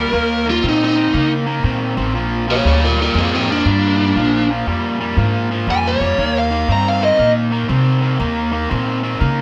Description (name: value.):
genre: blues.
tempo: 119 BPM.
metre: 4/4.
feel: swing 65% on 8ths.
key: unclear.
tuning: A4 = 439 Hz.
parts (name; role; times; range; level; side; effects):
biting lead guitar; melody; 0.0-7.3 s; C4 to Bb5; -19 LUFS; equal; overdrive, plate reverb.
cranked stack guitar; riff; 0.0-9.4 s; Bb2 to C4; -22 LUFS; equal; overdrive, spring reverb.
upright bass; bass; 0.0-9.4 s; A1 to Db3; -22 LUFS; equal; none.
room: moderate small room reverb, RT60 0.6 s.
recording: none.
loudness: -17 LUFS.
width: mono.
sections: 0.0-9.4 A section.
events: lead electric guitar solo 0.0-9.4.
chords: 0.1 Eb5; 2.1 Bb; 6.2 Eb.